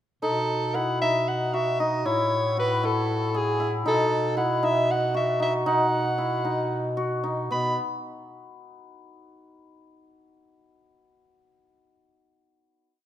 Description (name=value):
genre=contemporary instrumental, chamber music in an uneven meter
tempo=231 BPM (eighths)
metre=7/8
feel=straight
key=B mixolydian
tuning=A4 = 440 Hz
part: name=warm soprano saxophone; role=melody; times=0.2-7.8 s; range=G#4 to B5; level=-26 LUFS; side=equal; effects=none
part: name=hammered dulcimer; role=arpeggios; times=0.2-7.8 s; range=B3 to G#4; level=-27 LUFS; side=left 1 dB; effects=none
part: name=mellow bass clarinet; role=bass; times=0.2-7.8 s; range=A2 to B2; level=-28 LUFS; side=equal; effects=none
room=moderate recital hall reverb, RT60 1.4 s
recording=minimal, uncompressed stereo recording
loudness=-22 LUFS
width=side -11 dB against mid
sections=0.2-7.5 A section; 7.5-9.3 final note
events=none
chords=0.2 B7; 2.1 Amaj7; 3.9 B; 7.5 N.C.